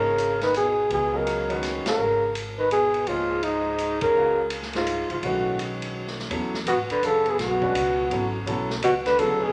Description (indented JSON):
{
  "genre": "modal jazz",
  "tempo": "167 BPM",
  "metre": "3/4",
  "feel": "swing 64% on 8ths",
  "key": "Db mixolydian, E mixolydian from 6.3 s",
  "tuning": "A4 = 440 Hz",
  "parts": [
    { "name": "trumpet with bucket mute", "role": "melody", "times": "0.0-9.5 s", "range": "Eb4 to Cb5", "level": "-25 LUFS", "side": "equal", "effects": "none" },
    { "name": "warm tenor saxophone", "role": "second line", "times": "0.0-9.5 s", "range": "Ab2 to Eb3", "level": "-33 LUFS", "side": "equal", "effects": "none" },
    { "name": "warm concert grand piano", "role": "accompaniment", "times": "0.0-9.4 s", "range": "Eb3 to F5", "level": "-34 LUFS", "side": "equal", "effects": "none" },
    { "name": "upright bass", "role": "bass", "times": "0.0-9.5 s", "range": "Ab1 to G#2", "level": "-38 LUFS", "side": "equal", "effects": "none" },
    { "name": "vintage drum kit", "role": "drums", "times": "0.2-9.3 s", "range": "hi-hat, kick drum, ride cymbal, snare drum", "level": "-36 LUFS", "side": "equal", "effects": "none" }
  ],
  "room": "wet large studio reverb, RT60 1.3 s",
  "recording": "none",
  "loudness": "-24 LUFS",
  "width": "mono",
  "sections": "0.0-6.3 A section; 6.3-9.5 B section",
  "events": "band accent 1.8, 4.0",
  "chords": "0.0 Db13; 5.2 Cb13; 6.3 E13",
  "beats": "0.18 0.55 | 0.91 1.27 1.63 | 1.99 2.35 2.71 | 3.07 3.43 3.79 | 4.15 4.51 4.87 | 5.23 5.59 5.95 | 6.31 6.67 7.03 | 7.39 7.75 8.11 | 8.47 8.83 9.19"
}